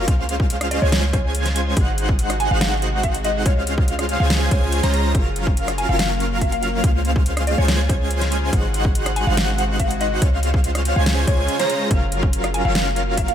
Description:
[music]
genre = future bass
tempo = 142 BPM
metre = 4/4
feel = half-time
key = Db major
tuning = A4 = 439 Hz
[part]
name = shimmering ambient pad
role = sustained chords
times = 0.0-13.3 s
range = C3 to Ab4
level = -31 LUFS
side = left 1 dB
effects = chorus, built-in reverb, sidechain pumping
[part]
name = airy dreamy lead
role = arpeggios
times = 0.0-13.3 s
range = F5 to Bb5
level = -28 LUFS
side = equal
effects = chorus, phaser, sidechain pumping
[part]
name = supersaw chords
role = riff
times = 0.0-13.3 s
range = Gb3 to Bb5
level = -25 LUFS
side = right 1 dB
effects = sidechain pumping
[part]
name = warm 808-style bass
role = bass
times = 0.0-13.3 s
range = Gb1 to Db2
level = -22 LUFS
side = equal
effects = sidechain pumping
[part]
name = dubstep drum kit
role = drums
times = 0.1-13.3 s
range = hi-hat, rim click, snare drum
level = -25 LUFS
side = equal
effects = none
[part]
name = electronic kick drum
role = drums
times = 0.1-13.3 s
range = none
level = -19 LUFS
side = equal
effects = none
[part]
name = mallet-like synth pluck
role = melody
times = 0.7-13.3 s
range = Db5 to Ab5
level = -27 LUFS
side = equal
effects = lush chorus, sidechain pumping, digital delay
[sound]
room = light reverb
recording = none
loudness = -17 LUFS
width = side -10 dB against mid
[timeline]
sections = 0.0-13.3 A section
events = none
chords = 0.1 Dbmaj7; 1.8 Ab7; 3.5 Dbmaj7; 5.1 Gbmaj7; 6.8 Dbmaj7; 8.5 Ab7; 10.2 Dbmaj7; 11.9 Gbmaj7

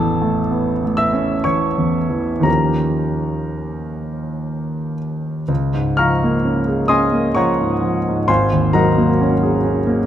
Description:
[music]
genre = classical, impressionist solo piano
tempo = 56-68 BPM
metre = 3/4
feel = rubato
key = Db major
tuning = A4 = 440 Hz
[part]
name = clear concert grand piano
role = solo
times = 0.0-10.1 s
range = Ab1 to F6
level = -16 LUFS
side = equal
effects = none
[sound]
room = moderate recital hall reverb, RT60 1.8 s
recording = close, detailed microphones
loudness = -16 LUFS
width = side -10 dB against mid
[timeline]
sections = 0.0-5.5 A section; 5.5-10.1 B section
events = none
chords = 0.0 A; 2.5 Eb9; 5.5 Db6; 8.3 Ab11

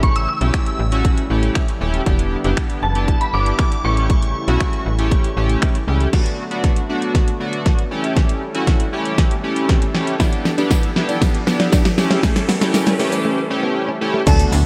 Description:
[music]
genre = dance-pop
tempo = 118 BPM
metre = 4/4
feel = straight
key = unclear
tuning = A4 = 436 Hz
[part]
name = shimmering bell with halo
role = melody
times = 0.0-5.6 s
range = A5 to E6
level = -27 LUFS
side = equal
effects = ensemble chorus, delay
[part]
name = chorused polysynth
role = accompaniment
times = 0.0-14.6 s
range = A3 to A4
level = -24 LUFS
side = equal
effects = sidechain pumping
[part]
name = soft supersaw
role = sustained chords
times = 0.0-14.7 s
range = C#3 to A4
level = -30 LUFS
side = equal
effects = sidechain pumping
[part]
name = slap-like FM bass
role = bass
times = 0.0-6.1, 14.3-14.7 s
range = Eb1 to D2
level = -21 LUFS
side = equal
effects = sidechain pumping
[part]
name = pop drum kit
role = drums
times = 0.0-14.6 s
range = crash cymbal, finger snaps, hi-hat, kick drum, shaker, snare drum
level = -20 LUFS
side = equal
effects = none
[part]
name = riser and impact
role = sound effects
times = 8.4-14.7 s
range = none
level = -33 LUFS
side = equal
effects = none
[part]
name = direct-recorded clean electric guitar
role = riff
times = 10.2-14.6 s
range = A3 to E4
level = -29 LUFS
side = equal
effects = lush chorus
[part]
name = tambourine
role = percussion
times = 10.2-14.6 s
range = none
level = -39 LUFS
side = equal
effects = none
[part]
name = concert flute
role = melody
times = 14.3-14.5 s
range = A5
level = -26 LUFS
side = equal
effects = none
[sound]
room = light reverb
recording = bright 1980s-style digital production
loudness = -18 LUFS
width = mono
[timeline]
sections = 0.0-6.1 A section; 6.1-14.3 B section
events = build-up 6.1-14.3; drum fill 6.1-13.3; break 13.3-14.3; impact 14.3-14.7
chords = 0.0 A7; 2.1 Em7; 3.8 A7; 6.1 D6; 7.9 A7; 10.2 Em7; 12.0 A7

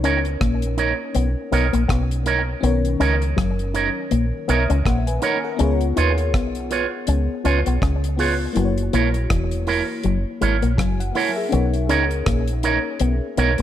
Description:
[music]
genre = lovers rock reggae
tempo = 81 BPM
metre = 4/4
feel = swing 58% on 16ths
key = B major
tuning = A4 = 441 Hz
[part]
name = FM electric piano with soft pad layer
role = accompaniment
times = 0.0-13.6 s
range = D#3 to B5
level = -27 LUFS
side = left 4 dB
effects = chorus, tremolo, dub echo
[part]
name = electric guitar with an envelope filter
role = riff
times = 0.0-13.6 s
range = E3 to D#4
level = -27 LUFS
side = left 8 dB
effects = dub echo
[part]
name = electric guitar with an envelope filter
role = stabs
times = 0.0-13.5 s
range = D#4 to C#5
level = -23 LUFS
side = right 6 dB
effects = spring reverb
[part]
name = deep dub fingered electric bass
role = bass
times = 0.0-13.6 s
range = E1 to D#2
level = -21 LUFS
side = equal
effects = none
[part]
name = deep reggae drum kit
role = drums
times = 0.0-13.6 s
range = hi-hat, kick drum, rim click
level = -25 LUFS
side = equal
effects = none
[sound]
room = light reverb, studio ambience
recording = none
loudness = -18 LUFS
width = side -11 dB against mid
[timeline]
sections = 0.0-13.6 A section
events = FM electric piano fill 4.1-5.6, 10.4-11.5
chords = 0.0 Bmaj9; 5.6 C#7; 8.6 F#7; 11.5 Bmaj9

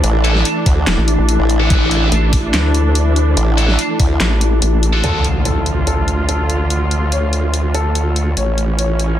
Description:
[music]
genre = heavy wobble dubstep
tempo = 144 BPM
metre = 4/4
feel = half-time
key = D harmonic minor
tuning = A4 = 441 Hz
[part]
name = muted studio string section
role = sustained chords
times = 0.0-9.2 s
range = D3 to F4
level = -23 LUFS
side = right 3 dB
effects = sidechain pumping
[part]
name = formant-sweep wobble bass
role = bass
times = 0.0-9.2 s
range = A1 to D2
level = -16 LUFS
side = equal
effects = chorus, overdrive
[part]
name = vowel-sweep wobble bass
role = bass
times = 0.0-5.0 s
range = E1 to D2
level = -14 LUFS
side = equal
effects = chorus, overdrive
[part]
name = big-room dance drum kit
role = drums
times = 0.0-9.1 s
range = handclaps, hi-hat, snare drum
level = -21 LUFS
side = left 1 dB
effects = none
[part]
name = deep dark ambient pad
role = texture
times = 0.0-9.2 s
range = E4 to A4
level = -22 LUFS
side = left 2 dB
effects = chorus, built-in reverb, sidechain pumping
[part]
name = heavy high-gain guitar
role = stabs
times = 0.2-5.2 s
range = D4 to A4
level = -23 LUFS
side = left 1 dB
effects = distortion, dub echo
[part]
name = electronic kick drum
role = drums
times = 0.7-4.1 s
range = none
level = -14 LUFS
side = equal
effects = overdrive
[part]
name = dark grand piano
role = melody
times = 5.0-9.0 s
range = A4 to C#5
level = -24 LUFS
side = left 2 dB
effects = dub echo
[part]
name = impact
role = sound effects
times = 5.0-6.7 s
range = none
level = -22 LUFS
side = equal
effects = none
[sound]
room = little or no reverb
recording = dense, heavily limited modern master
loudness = -13 LUFS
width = side -11 dB against mid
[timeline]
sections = 0.0-5.0 A section; 5.0-9.2 B section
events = drop 0.0-5.0; kick drops out 4.6-5.0; impact 5.0-6.7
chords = 0.0 Asus4; 5.0 Dm; 8.4 A

